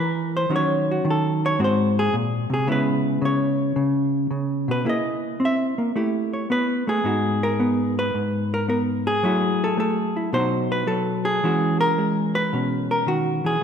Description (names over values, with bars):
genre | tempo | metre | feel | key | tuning
solo jazz | 110 BPM | 4/4 | swing 69% on 8ths | G# minor | A4 = 441 Hz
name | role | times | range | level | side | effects
hollow-body jazz guitar | solo | 0.0-13.6 s | G#2 to E5 | -20 LUFS | equal | none
room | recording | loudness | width
wet concert hall reverb, RT60 2.0 s | recorded in a church or concert hall | -20 LUFS | side -7 dB against mid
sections
0.0-7.0 A section; 7.0-13.6 B section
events
hollow-body jazz guitar solo 0.0-7.0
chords
0.5 D#m7b5; 1.6 G#7; 2.7 C#m7; 4.9 C7alt/Bb; 6.0 A9; 7.0 G#m9; 9.2 F#m7; 10.3 B7; 11.4 E69